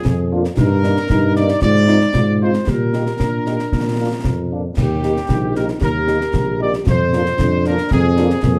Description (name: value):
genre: military-style march for wind band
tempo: 114 BPM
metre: 2/4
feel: straight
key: Eb major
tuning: A4 = 441 Hz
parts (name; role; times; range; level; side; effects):
- bright trumpet section; melody; 0.0-8.6 s; G4 to D5; -24 LUFS; equal; none
- dark euphonium; second line; 0.0-8.6 s; Bb3 to G4; -25 LUFS; equal; none
- concert snare drum, concert bass drum and clash cymbals; drums; 0.0-8.6 s; none; -23 LUFS; equal; none
- warm tuba; bass; 0.1-8.6 s; Bb1 to Bb2; -21 LUFS; equal; none
- mellow French horn section; accompaniment; 0.3-8.3 s; Bb3 to G4; -27 LUFS; equal; none
room: moderate large studio reverb, RT60 0.8 s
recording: dark, warm production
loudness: -17 LUFS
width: mono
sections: 0.0-8.6 A section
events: none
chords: 0.0 Bb7/F; 0.6 Eb/G; 1.6 Fm7/Ab; 2.7 Eb/Bb; 3.7 Bb; 4.8 Eb; 6.9 Bb7/F